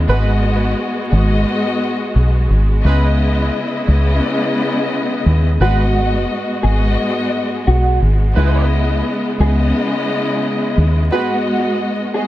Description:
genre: hip hop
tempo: 87 BPM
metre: 4/4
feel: swing 60% on 16ths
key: C# minor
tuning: A4 = 440 Hz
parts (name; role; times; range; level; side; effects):
- clear studio string section; sustained chords; 0.0-12.3 s; C#3 to D#5; -26 LUFS; right 1 dB; high-pass filter, low-pass filter
- deep dub fingered electric bass; bass; 0.0-11.1 s; G#1 to D#2; -14 LUFS; equal; none
- warm studio string section; accompaniment; 0.1-12.3 s; G#2 to D#5; -19 LUFS; left 2 dB; high-pass filter, low-pass filter, tape echo
- warm horn section; stabs; 0.1-11.3 s; G#3 to B4; -25 LUFS; right 4 dB; high-pass filter, low-pass filter, tape echo
- mellow electric guitar; melody; 5.6-12.3 s; E4 to G#4; -22 LUFS; right 2 dB; ensemble chorus, high-pass filter, low-pass filter, tape echo
room: small room ambience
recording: echo-heavy mix, vinyl crackle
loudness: -14 LUFS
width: side -15 dB against mid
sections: 0.0-12.3 A section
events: break 0.1-5.6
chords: 0.1 G#m7; 2.8 C#m7; 5.6 G#m7; 8.4 C#m7; 11.1 G#m7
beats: | 0.08 0.77 1.46 2.15 | 2.84 3.53 4.22 4.91 | 5.60 6.29 6.98 7.67 | 8.36 9.05 9.74 10.43 | 11.12 11.81

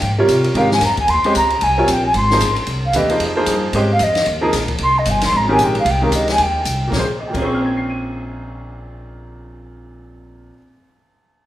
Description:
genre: modal jazz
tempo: 226 BPM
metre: 4/4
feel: swing 60% on 8ths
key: unclear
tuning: A4 = 440 Hz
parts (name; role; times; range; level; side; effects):
- mellow jazz flute; melody; 0.0-6.9 s; Bb4 to C6; -17 LUFS; equal; none
- upright bass; bass; 0.0-10.5 s; G1 to C3; -22 LUFS; equal; none
- open jazz drum kit; drums; 0.0-7.4 s; crash cymbal, hi-hat, kick drum, ride cymbal, snare drum; -24 LUFS; left 1 dB; none
- clear baby grand piano; accompaniment; 0.2-10.9 s; Bb2 to Eb7; -19 LUFS; right 1 dB; none
room: wet recital hall reverb, RT60 1.4 s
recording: recorded in a church or concert hall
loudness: -14 LUFS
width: side -13 dB against mid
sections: 0.0-2.7 A section; 2.7-6.9 B section; 6.9-9.0 C section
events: flute solo 2.7-6.9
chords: 0.0 Ab; 6.9 Bbm9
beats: 0.03 0.29 | 0.56 0.82 1.09 1.35 | 1.62 1.88 2.15 2.41 | 2.68 2.94 3.21 3.47 | 3.74 4.00 4.27 4.53 | 4.80 5.06 5.33 5.59 | 5.86 6.12 6.39 6.65 | 6.92 7.18 7.45 7.71 | 7.98 8.24 8.51 8.77

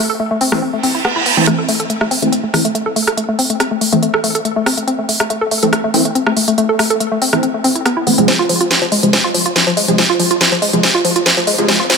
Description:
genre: driving peak-time techno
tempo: 141 BPM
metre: 4/4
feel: straight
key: A harmonic minor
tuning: A4 = 441 Hz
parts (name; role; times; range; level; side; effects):
- woody wave-folded pluck; riff; 0.0-12.0 s; F3 to A4; -16 LUFS; left 1 dB; chorus, ping-pong delay
- techno drum kit; drums; 0.4-12.0 s; hi-hat, rim click, snare drum; -16 LUFS; right 1 dB; overdrive, high-pass filter on hats, studio ambience, high-pass filter on snare
- rave stab; stabs; 0.5-11.8 s; C3 to C4; -18 LUFS; equal; chorus, built-in reverb, cassette tape, tape echo
- reverse cymbal and riser; sound effects; 0.8-1.5, 9.5-12.0 s; none; -22 LUFS; right 6 dB; none
room: moderate huge ambient reverb, RT60 5.0 s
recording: high-pass filter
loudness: -12 LUFS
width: side -5 dB against mid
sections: 0.0-1.5 A section; 1.5-12.0 B section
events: filter sweep on synth arpeggio sound 0.0-1.5; reverse cymbal 0.8-1.5; build-up 1.5-12.0; filter sweep on synth stab 1.5-12.0; filter sweep 1.5-12.0; drum fill 8.3-12.0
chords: 0.0 Am; 8.3 Fm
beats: 0.20 0.62 1.05 | 1.47 1.90 2.32 2.75 | 3.17 3.60 4.03 4.45 | 4.88 5.30 5.73 6.15 | 6.58 7.00 7.43 7.86 | 8.28 8.71 9.13 9.56 | 9.98 10.41 10.83 11.26 | 11.69

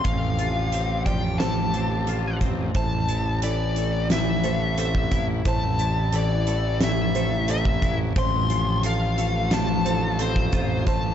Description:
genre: post-rock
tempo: 89 BPM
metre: 4/4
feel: straight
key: A minor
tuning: A4 = 440 Hz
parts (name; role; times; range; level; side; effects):
- biting lead guitar; melody; 0.0-11.1 s; C5 to C6; -28 LUFS; left 3 dB; overdrive, tape echo
- rich chamber string section; sustained chords; 0.0-11.1 s; C3 to G4; -37 LUFS; equal; none
- felt-muted upright piano; arpeggios; 0.0-11.1 s; A4 to D5; -36 LUFS; right 8 dB; tape echo
- twelve-string electric guitar; arpeggios; 0.0-11.1 s; A2 to F4; -30 LUFS; left 2 dB; ensemble chorus, tape echo
- fuzz fingered electric bass; bass; 0.0-11.1 s; A1; -25 LUFS; right 1 dB; overdrive
- huge arena drum kit; drums; 0.0-11.0 s; hi-hat, kick drum, snare drum; -26 LUFS; equal; none
room: light reverb, small room ambience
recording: dark, warm production, nothing above 7.7 kHz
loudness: -21 LUFS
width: side -9 dB against mid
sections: 0.0-2.8 A section; 2.8-11.1 B section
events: none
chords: 0.0 F/A; 2.8 Am; 8.2 F/A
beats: | 0.06 0.73 1.41 2.08 | 2.76 3.43 4.11 4.78 | 5.46 6.14 6.81 7.49 | 8.17 8.84 9.52 10.20 | 10.87

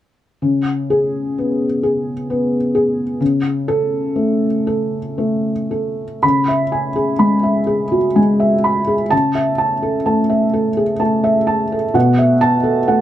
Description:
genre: neoclassical minimalist piano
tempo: 37-44 BPM (dotted quarters)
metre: 6/8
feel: rubato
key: C# minor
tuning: A4 = 440 Hz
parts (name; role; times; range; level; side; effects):
- felt-muted upright piano; solo; 0.4-13.0 s; B2 to B5; -14 LUFS; equal; none
room: moderate small room reverb, RT60 0.5 s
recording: dark, warm production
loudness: -14 LUFS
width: side -12 dB against mid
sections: 0.4-6.2 A section; 6.2-13.0 B section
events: none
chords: 0.4 C#5; 3.2 A/C#; 6.2 C#m7; 9.1 A/C#; 11.9 B7sus4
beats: | 0.42 1.83 | 3.21 4.66 | 6.23 7.68 | 9.12 10.53 | 11.94

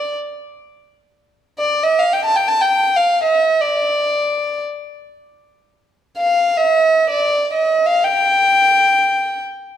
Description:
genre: Persian modal ensemble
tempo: free time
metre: none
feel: none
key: D dastgah shur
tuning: A4 = 440 Hz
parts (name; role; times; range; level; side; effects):
- rich violin; solo; 0.0-9.4 s; D5 to A5; -14 LUFS; equal; none
room: wet recital hall reverb, RT60 1.6 s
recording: dark, warm production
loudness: -13 LUFS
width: side -10 dB against mid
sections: 0.0-9.8 A section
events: none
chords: none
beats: free time

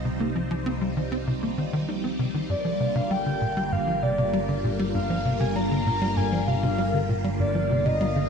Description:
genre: ambient, sequencer-driven space music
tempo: 98 BPM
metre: 4/4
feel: straight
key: unclear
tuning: A4 = 436 Hz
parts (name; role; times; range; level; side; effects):
- phased string machine; sustained chords; 0.0-8.3 s; D3 to F4; -28 LUFS; left 1 dB; ensemble chorus, phaser
- tight sequencer bass; riff; 0.0-8.2 s; G2 to Eb4; -27 LUFS; equal; wide subtle chorus, ping-pong delay
- analog drone; bass; 0.0-8.3 s; G1 to C2; -32 LUFS; equal; chorus
- breathy flute-like synth lead; melody; 2.5-8.3 s; D5 to Bb5; -28 LUFS; equal; analog chorus, ping-pong delay
room: moderate plate reverb, RT60 3.1 s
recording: none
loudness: -23 LUFS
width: side -6 dB against mid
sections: 0.0-8.3 A section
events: none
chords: 0.0 Cm; 2.5 Gm7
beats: | 0.05 0.66 1.27 1.89 | 2.50 3.11 3.72 4.33 | 4.95 5.56 6.17 6.78 | 7.39 8.01

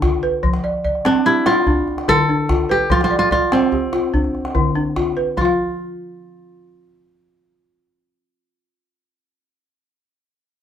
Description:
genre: west african traditional, West African string and xylophone music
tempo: 97 BPM (dotted quarters)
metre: 12/8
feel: straight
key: unclear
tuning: A4 = 445 Hz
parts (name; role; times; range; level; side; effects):
- kora; melody; 0.0-9.2 s; C4 to A4; -19 LUFS; equal; none
- balafon; arpeggios; 0.0-9.3 s; D3 to F5; -18 LUFS; equal; none
- calabash; percussion; 0.0-5.6 s; none; -23 LUFS; equal; none
room: wet small room reverb, RT60 0.5 s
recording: band playing live in one room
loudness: -15 LUFS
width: side -9 dB against mid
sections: 0.0-5.4 A section; 5.4-7.8 B section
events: none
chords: 0.4 F5; 1.7 Dm; 2.9 F5; 4.1 Dm; 5.4 N.C.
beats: | 0.43 1.05 1.67 2.29 | 2.90 3.52 4.14 4.76 | 5.38 5.99 6.61 7.23

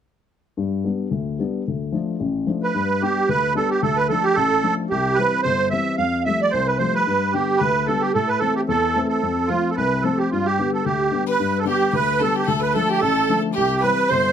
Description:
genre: celtic folk, Celtic reel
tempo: 222 BPM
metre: 4/4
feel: swing 57% on 8ths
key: G mixolydian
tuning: A4 = 439 Hz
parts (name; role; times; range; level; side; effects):
- dark baby grand piano; accompaniment; 0.6-14.3 s; G1 to D4; -22 LUFS; left 5 dB; none
- musette accordion; melody; 2.6-14.3 s; F4 to F5; -20 LUFS; right 4 dB; none
- clear fiddle; second line; 11.3-14.3 s; G4 to C5; -26 LUFS; left 7 dB; none
room: moderate studio reverb, RT60 0.5 s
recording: none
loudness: -18 LUFS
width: side -8 dB against mid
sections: 0.6-2.7 A section; 2.7-11.4 B section; 11.4-14.3 B section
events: none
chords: 0.6 G; 1.7 Dm; 2.7 G; 3.8 Dm; 4.9 C; 6.0 Fadd9; 7.1 G; 8.1 Am; 9.2 F; 10.3 G; 12.5 Dm; 13.5 C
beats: | 0.57 0.84 1.11 1.39 | 1.66 1.93 2.20 2.47 | 2.74 3.01 3.28 3.55 | 3.82 4.09 4.36 4.63 | 4.90 5.17 5.44 5.71 | 5.98 6.25 6.52 6.79 | 7.06 7.33 7.60 7.87 | 8.14 8.41 8.68 8.95 | 9.22 9.49 9.76 10.03 | 10.30 10.57 10.84 11.11 | 11.38 11.65 11.92 12.19 | 12.46 12.73 13.00 13.27 | 13.54 13.81 14.08

